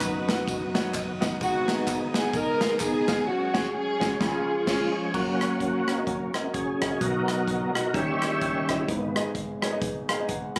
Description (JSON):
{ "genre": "uptempo gospel", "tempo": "128 BPM", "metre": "4/4", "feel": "swing 59% on 8ths", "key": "F# major", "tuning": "A4 = 440 Hz", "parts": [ { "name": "dark studio string section", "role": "melody", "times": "0.0-5.1 s", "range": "B3 to B4", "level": "-29 LUFS", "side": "equal", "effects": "none" }, { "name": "warm grand piano", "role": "accompaniment", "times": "0.0-10.6 s", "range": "F#1 to F#5", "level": "-34 LUFS", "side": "equal", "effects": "none" }, { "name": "overdriven tonewheel organ", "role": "sustained chords", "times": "0.0-9.2 s", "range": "F#2 to E5", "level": "-31 LUFS", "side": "equal", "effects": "fast rotary speaker, chorus vibrato" }, { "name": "natural country drum kit", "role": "drums", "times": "0.0-10.6 s", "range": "crash cymbal, hi-hat, kick drum, ride cymbal, rim click, snare drum", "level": "-33 LUFS", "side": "equal", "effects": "none" }, { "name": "handclaps and tambourine", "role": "percussion", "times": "0.0-3.2 s", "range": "none", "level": "-40 LUFS", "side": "equal", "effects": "none" }, { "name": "mellow French horn section", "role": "sustained chords", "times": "5.1-10.6 s", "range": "F#3 to G#4", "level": "-41 LUFS", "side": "equal", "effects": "none" } ], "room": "moderate large studio reverb, RT60 1.0 s", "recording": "recorded on a phone in the room, club reverb, compression", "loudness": "-27 LUFS", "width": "mono", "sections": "0.0-5.1 A section; 5.1-10.6 B section", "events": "grand piano fill 0.5-1.4; band accent 3.3-5.1; tonewheel organ solo 5.1-10.6", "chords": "0.0 B/F#; 1.4 G#m; 3.3 C#sus4; 4.2 C#; 5.1 F#; 7.0 B; 7.9 D#7b9; 8.9 G#m", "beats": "0.02 0.48 0.95 | 1.41 1.88 2.34 2.81 | 3.27 3.74 4.21 4.67 | 5.14 5.61 6.07 6.54 | 7.01 7.48 7.95 8.42 | 8.88 9.35 9.82 10.29" }